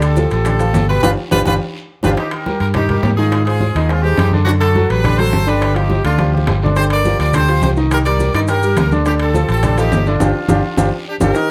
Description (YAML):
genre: latin, salsa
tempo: 209 BPM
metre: 4/4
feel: straight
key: unclear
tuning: A4 = 444 Hz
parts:
  - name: brilliant horn section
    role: melody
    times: 0.0-11.5 s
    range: C4 to D5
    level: -22 LUFS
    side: equal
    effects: none
  - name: bright baby grand piano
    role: accompaniment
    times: 0.0-11.5 s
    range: B2 to Eb5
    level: -21 LUFS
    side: equal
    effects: none
  - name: fingered electric bass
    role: bass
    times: 0.0-11.3 s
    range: G1 to Ab2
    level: -18 LUFS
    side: equal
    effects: none
  - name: congas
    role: percussion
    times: 0.0-11.5 s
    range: none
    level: -25 LUFS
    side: equal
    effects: none
  - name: maracas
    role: percussion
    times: 0.0-2.1, 6.8-11.5 s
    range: none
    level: -38 LUFS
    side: equal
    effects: none
  - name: timbales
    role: percussion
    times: 0.0-11.3 s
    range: none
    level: -29 LUFS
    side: equal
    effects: none
  - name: bongos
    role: percussion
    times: 0.2-11.5 s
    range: none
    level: -28 LUFS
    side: equal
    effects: none
  - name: guiro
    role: percussion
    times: 0.2-11.5 s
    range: none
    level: -39 LUFS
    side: equal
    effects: none
room: light reverb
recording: close, detailed microphones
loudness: -15 LUFS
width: mono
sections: 0.0-2.2 A section; 2.2-11.3 A section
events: band accent 1.0-2.2, 10.2-11.3; drum fill 1.3-2.2, 6.2-6.8, 10.8-11.3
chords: 0.0 Dm; 1.0 G7(no3); 2.2 Fm11 (rootless); 3.3 Ab6; 4.5 D7; 5.6 G5; 6.8 G7sus4; 7.9 Cm9; 9.1 Dm; 10.2 G5